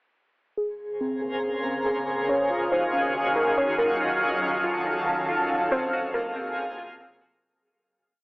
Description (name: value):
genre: hip hop, atmospheric cloud-rap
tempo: 140 BPM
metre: 4/4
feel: half-time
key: Bb minor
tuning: A4 = 441 Hz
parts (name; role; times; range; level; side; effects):
- shimmering ambient pad; sustained chords; 1.2-7.4 s; C3 to F5; -26 LUFS; equal; chorus, built-in reverb, phaser, low-pass filter
- glassy digital keys; arpeggios; 0.6-7.4 s; C4 to Ab4; -31 LUFS; equal; chorus, low-pass filter, analog delay
- twinkling granular texture; texture; 1.0-7.4 s; C4 to Ab5; -30 LUFS; equal; built-in reverb
- warbly dusty pluck; melody; 2.3-6.5 s; Bb4 to Db5; -27 LUFS; equal; chorus, low-pass filter, analog delay
room: light reverb, digital ambience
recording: dry, gritty hardware recording, telephone sound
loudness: -23 LUFS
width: side -30 dB against mid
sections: 0.6-7.4 breakdown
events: filter sweep 0.6-7.4; fade-out 5.7-7.4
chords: 0.6 Bbm9; 2.3 Ebm11; 4.0 F7b9b13; 5.7 Ab13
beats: | 0.57 1.00 1.43 1.86 | 2.29 2.72 3.15 3.57 | 4.00 4.43 4.86 5.29 | 5.72 6.14 6.57 7.00